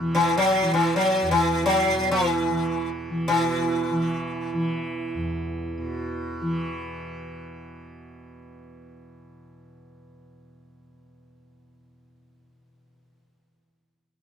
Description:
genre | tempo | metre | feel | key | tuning
indian classical, Hindustani | free time | none | none | unclear | A4 = 440 Hz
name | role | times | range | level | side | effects
tanpura | drone | 0.0-13.6 s | E2 to E3 | -30 LUFS | equal | none
sitar | melody | 0.1-7.3 s | E3 to F#3 | -23 LUFS | equal | none
room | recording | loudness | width
light reverb | none | -22 LUFS | side -7 dB against mid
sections
0.0-3.3 A section; 3.3-6.9 B section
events
none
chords
none

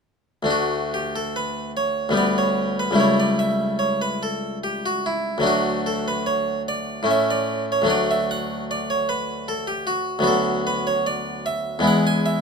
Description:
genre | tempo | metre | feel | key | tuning
classical, baroque-style suite movement for harpsichord | 74 BPM | 3/4 | uneven beats, rubato | D major | A4 = 441 Hz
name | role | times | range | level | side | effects
harpsichord | solo | 0.4-12.4 s | C#2 to G#5 | -20 LUFS | equal | none
room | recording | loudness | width
light reverb | none | -20 LUFS | side -5 dB against mid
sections
0.5-12.4 A section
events
none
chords
0.5 D5; 2.2 G/D; 3.0 A7/C#; 5.4 D; 7.1 A; 7.9 D; 10.2 Bm/D; 11.8 E

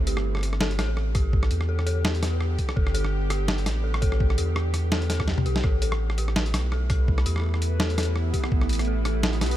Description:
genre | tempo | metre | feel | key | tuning
half-time drum and bass | 167 BPM | 4/4 | swing 56% on 16ths, half-time | unclear | A4 = 440 Hz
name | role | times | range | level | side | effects
bowed-like drone | sustained chords | 0.0-9.6 s | D3 to G4 | -34 LUFS | equal | built-in reverb, sidechain pumping
saturated sub bass | bass | 0.0-9.6 s | G1 to E2 | -25 LUFS | equal | none
dark detuned synth bell | arpeggios | 0.1-9.6 s | G4 to A4 | -34 LUFS | left 3 dB | chorus, phaser, digital delay
boom bap sampler-style drum kit | drums | 0.1-9.5 s | hi-hat, rim click, snare drum, toms | -29 LUFS | equal | small room ambience
electronic kick drum | drums | 1.2-8.6 s | none | -24 LUFS | equal | small room ambience
backwards swelling texture | texture | 6.4-9.6 s | B3 to B4 | -37 LUFS | right 5 dB | built-in reverb
room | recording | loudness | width
little or no reverb | none | -22 LUFS | side -13 dB against mid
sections
0.0-9.6 A section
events
kick drops out 5.3-5.6; drum fill 5.3-5.6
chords
0.0 G; 5.6 A5

